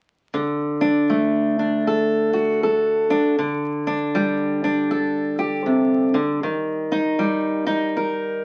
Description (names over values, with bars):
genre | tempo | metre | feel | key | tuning
folk, solo fingerstyle acoustic guitar | 79 BPM | 4/4 | swing 63% on 8ths | unclear | A4 = 441 Hz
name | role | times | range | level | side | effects
fingerpicked steel-string acoustic guitar | solo | 0.3-8.4 s | C3 to Bb4 | -21 LUFS | equal | none
room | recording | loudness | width
wet studio ambience, RT60 0.5 s | very old 78 rpm record, vinyl crackle | -21 LUFS | mono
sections
0.3-8.4 A section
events
none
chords
0.3 D; 3.4 G5/D; 6.4 Eb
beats
| 0.34 1.10 1.86 2.62 | 3.38 4.14 4.90 5.67 | 6.43 7.19 7.95